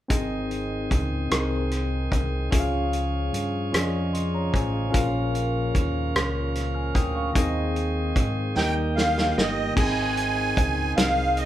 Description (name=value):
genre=slow gospel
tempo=50 BPM (dotted quarters)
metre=6/8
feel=straight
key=Ab major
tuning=A4 = 441 Hz
part: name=barky tine electric piano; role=accompaniment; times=0.1-11.5 s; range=Ab2 to F6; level=-28 LUFS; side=left 2 dB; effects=medium stereo tremolo
part: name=bright tonewheel organ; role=sustained chords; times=0.1-11.5 s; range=Eb3 to Bb4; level=-32 LUFS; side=right 2 dB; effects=overdrive, stopped rotary speaker
part: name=fingered electric bass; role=bass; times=0.1-11.5 s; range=G1 to Ab2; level=-28 LUFS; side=equal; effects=none
part: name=warm soul drum kit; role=drums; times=0.1-11.5 s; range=crash cymbal, hi-hat, kick drum, rim click, snare drum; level=-26 LUFS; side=equal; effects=none
part: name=musette accordion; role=melody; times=8.6-11.5 s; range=Eb5 to Ab5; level=-25 LUFS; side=right 3 dB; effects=none
room=moderate large studio reverb, RT60 0.8 s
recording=band playing live in one room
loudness=-22 LUFS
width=side -12 dB against mid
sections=0.1-9.8 A section; 9.8-11.5 B section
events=drum fill 8.6-9.8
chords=0.1 Ab; 2.5 Db; 4.9 Bbm; 7.4 Ab/Eb; 8.6 Eb; 9.8 Ab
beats=| 0.11 1.32 | 2.52 3.73 | 4.94 6.15 | 7.35 8.56 | 9.76 10.97